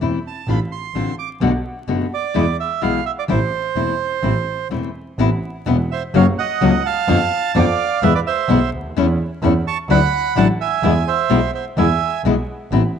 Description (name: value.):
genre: tango.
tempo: 128 BPM.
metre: 4/4.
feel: rubato.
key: A harmonic minor.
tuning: A4 = 440 Hz.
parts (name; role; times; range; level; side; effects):
nylon-string guitar; accompaniment; 0.0-12.8 s; B2 to F#4; -20 LUFS; left 6 dB; none.
clear double bass; bass; 0.0-12.9 s; E1 to F2; -20 LUFS; right 2 dB; none.
bandoneon; melody; 0.3-12.2 s; B4 to D6; -20 LUFS; right 9 dB; none.
room: moderate spring reverb, RT60 1.5 s, small room ambience.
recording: 1960s-style stereo with parts hard left and right, vinyl crackle.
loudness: -16 LUFS.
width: side -8 dB against mid.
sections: 0.0-5.2 A section; 5.2-13.0 B section.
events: none.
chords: 0.5 Dm7/A; 1.4 Bm7; 2.4 E; 3.3 Am; 5.2 Amadd9; 6.1 F#; 7.1 Bm7b5/F; 8.0 E; 9.0 A/E; 9.9 Dadd9; 10.8 E.